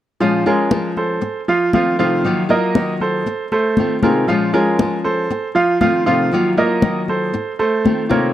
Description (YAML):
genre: latin, Cuban son and guajira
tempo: 118 BPM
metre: 4/4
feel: straight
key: Bb harmonic minor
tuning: A4 = 440 Hz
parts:
  - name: nylon-string guitar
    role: accompaniment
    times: 0.2-8.3 s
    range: Bb2 to F4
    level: -18 LUFS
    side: left 3 dB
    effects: none
  - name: bright baby grand piano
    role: arpeggios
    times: 0.2-8.3 s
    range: F3 to F5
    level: -17 LUFS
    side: right 3 dB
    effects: none
  - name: congas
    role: percussion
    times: 0.2-8.3 s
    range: none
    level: -19 LUFS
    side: left 3 dB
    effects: none
room: light reverb, small room ambience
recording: dry, close 1970s-style studio recording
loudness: -14 LUFS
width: side -12 dB against mid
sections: 0.2-8.3 A section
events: none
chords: 0.2 Bbm7; 1.2 F7; 2.2 Ebmadd9; 3.3 F7; 4.3 Bbm7; 5.3 F7; 6.3 Ebmadd9; 7.3 F7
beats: | 0.20 0.71 1.22 1.73 | 2.24 2.75 3.26 3.77 | 4.28 4.79 5.30 5.81 | 6.32 6.83 7.34 7.85